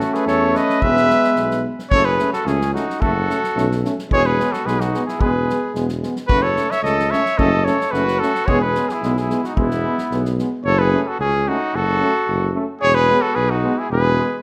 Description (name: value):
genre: balkan folk, Balkan brass band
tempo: 110 BPM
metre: 2/4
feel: straight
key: unclear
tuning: A4 = 440 Hz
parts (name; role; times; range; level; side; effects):
- warm cornet; melody; 0.0-14.4 s; E4 to E5; -22 LUFS; equal; none
- clear trumpet; second line; 0.0-14.4 s; B3 to C#5; -27 LUFS; equal; none
- brilliant trombone; accompaniment; 0.0-14.3 s; G#3 to A3; -30 LUFS; equal; none
- warm euphonium; accompaniment; 0.0-14.3 s; B3 to C#4; -28 LUFS; equal; none
- mellow tuba; bass; 0.0-14.2 s; E1 to E2; -25 LUFS; equal; none
- natural country drum kit; percussion; 0.0-10.5 s; kick drum, snare drum; -28 LUFS; equal; none
room: moderate recital hall reverb, RT60 1.4 s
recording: none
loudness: -18 LUFS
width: mono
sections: 0.0-1.9 A section; 1.9-10.7 B section; 10.7-14.4 B section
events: none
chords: 0.0 A; 0.8 E; 1.9 F#m; 4.1 E; 6.3 F#m; 8.5 E; 10.7 F#m; 12.8 E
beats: 0.27 | 0.82 1.37 | 1.92 2.46 | 3.01 3.56 | 4.11 4.66 | 5.20 5.75 | 6.30 6.84 | 7.39 7.93 | 8.48 9.02 | 9.57 10.11 | 10.65 11.19 | 11.73 12.28 | 12.82 13.36 | 13.89